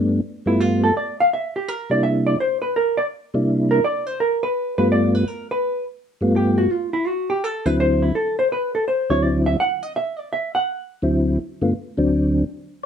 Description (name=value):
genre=jazz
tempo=167 BPM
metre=4/4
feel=swing 65% on 8ths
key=G major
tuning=A4 = 440 Hz
part: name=percussive tonewheel organ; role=melody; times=0.0-12.9 s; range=D2 to F4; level=-18 LUFS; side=equal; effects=slow rotary speaker, chorus vibrato, plate reverb
part: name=hollow-body jazz guitar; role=accompaniment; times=0.5-11.3 s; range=E4 to F#5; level=-21 LUFS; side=right 1 dB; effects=none
room=light reverb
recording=none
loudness=-18 LUFS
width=side -8 dB against mid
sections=0.0-12.8 A section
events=hollow-body jazz guitar solo 0.0-12.8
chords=0.0 G9; 1.3 C9; 4.2 G9; 7.1 D9; 11.4 N.C.; 12.1 D7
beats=0.23 0.59 0.95 | 1.31 1.67 2.03 2.39 | 2.75 3.11 3.47 3.83 | 4.19 4.55 4.91 5.27 | 5.63 5.99 6.35 6.71 | 7.07 7.43 7.79 8.15 | 8.51 8.87 9.22 9.59 | 9.95 10.30 10.66 11.02 | 11.38 11.74 12.10 12.46 | 12.82